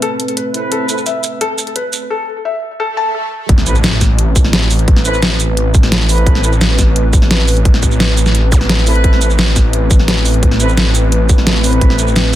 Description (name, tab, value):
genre	dark technical drum and bass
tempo	173 BPM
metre	4/4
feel	straight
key	A minor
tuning	A4 = 440 Hz
part	dark analog pad	sustained chords	0.0-12.4 s	A3 to B4	-21 LUFS	equal	chorus, sidechain pumping
part	felt-muted upright piano	arpeggios	0.0-3.2 s	A4 to A5	-19 LUFS	left 3 dB	sidechain pumping, low-pass filter, tape echo
part	dubstep drum kit	drums	0.0-12.2 s	hi-hat, shaker, snare drum	-16 LUFS	equal	overdrive
part	dark brass ensemble	stabs	0.5-1.0, 3.7-6.5, 8.9-12.1 s	C4 to B4	-21 LUFS	right 2 dB	tape echo
part	swell, impact and zap	sound effects	2.9-4.9, 8.5-8.6 s	none	-22 LUFS	equal	none
part	wide detuned saw bass	bass	3.5-12.4 s	A1	-13 LUFS	equal	chorus, overdrive
part	electronic kick drum	drums	3.5-12.4 s	none	-10 LUFS	equal	none
room	light reverb, digital ambience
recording	dense, heavily limited modern master, high-pass filter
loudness	-10 LUFS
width	side -13 dB against mid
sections	0.0-3.5 A section; 3.5-12.4 B section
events	build-up 0.0-3.5; swell 2.9-3.5; drop 3.5-12.4; impact 3.5-4.9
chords	0.0 Amadd9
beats	0.02 0.37 | 0.72 1.06 1.41 1.76 | 2.10 2.45 2.80 3.14 | 3.49 3.84 4.18 4.53 | 4.88 5.22 5.57 5.92 | 6.27 6.61 6.96 7.31 | 7.65 8.00 8.35 8.69 | 9.04 9.39 9.73 10.08 | 10.43 10.77 11.12 11.47 | 11.81 12.16